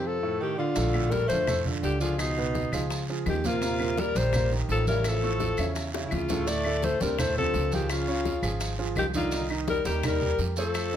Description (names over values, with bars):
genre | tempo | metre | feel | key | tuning
Afro-Cuban jazz | 168 BPM | 4/4 | straight | unclear | A4 = 440 Hz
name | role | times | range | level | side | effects
breathy alto saxophone | melody | 0.0-11.0 s | Eb4 to D5 | -29 LUFS | left 4 dB | none
breathy tenor saxophone | second line | 0.0-11.0 s | Cb3 to A3 | -34 LUFS | right 4 dB | none
warm grand piano | accompaniment | 0.0-11.0 s | A2 to Eb5 | -32 LUFS | right 4 dB | none
upright bass | bass | 0.0-11.0 s | Ab1 to F2 | -30 LUFS | equal | none
bongos | percussion | 0.8-11.0 s | none | -40 LUFS | left 8 dB | none
congas | percussion | 0.8-11.0 s | none | -35 LUFS | left 1 dB | none
guiro | percussion | 0.8-11.0 s | none | -42 LUFS | right 6 dB | none
maracas | percussion | 0.8-11.0 s | none | -40 LUFS | right 3 dB | none
claves | percussion | 0.9-10.9 s | none | -41 LUFS | left 3 dB | none
room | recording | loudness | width
light reverb | none | -24 LUFS | side -10 dB against mid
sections
0.8-11.0 A section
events
break 0.0-0.8; drum fill 5.9-6.5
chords
0.0 F; 0.8 Bbmaj9; 2.2 Db9; 3.6 Eb69; 5.0 A; 6.5 Dm7; 7.9 Dbadd9; 9.3 Cm7